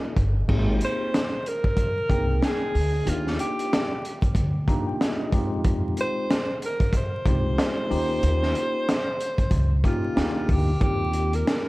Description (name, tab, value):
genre	hip hop, jazz-hop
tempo	93 BPM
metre	4/4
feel	swing 59% on 16ths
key	Eb major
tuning	A4 = 441 Hz
part	mellow alto saxophone	melody	0.0-11.7 s	F4 to Eb5	-28 LUFS	equal	analog delay
part	mellow tine electric piano	accompaniment	0.0-11.7 s	Ab3 to Bb5	-29 LUFS	left 1 dB	medium stereo tremolo
part	upright bass	bass	0.2-11.4 s	G1 to F2	-25 LUFS	equal	none
part	crunchy breakbeat drum kit	drums	0.2-11.6 s	crash cymbal, hi-hat, kick drum, snare drum	-25 LUFS	equal	none
room	little or no reverb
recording	vinyl crackle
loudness	-21 LUFS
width	side -20 dB against mid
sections	0.5-10.8 A section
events	tine electric piano fill 4.4-5.7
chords	0.5 Abmaj9; 3.1 Ebmaj9; 5.3 Fm9; 7.9 Eb7; 10.2 Ebmaj9; 10.8 Eb6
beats	| 0.49 1.13 1.78 2.42 | 3.07 3.71 4.36 5.00 | 5.65 6.29 6.94 7.58 | 8.23 8.88 9.52 10.17 | 10.81 11.46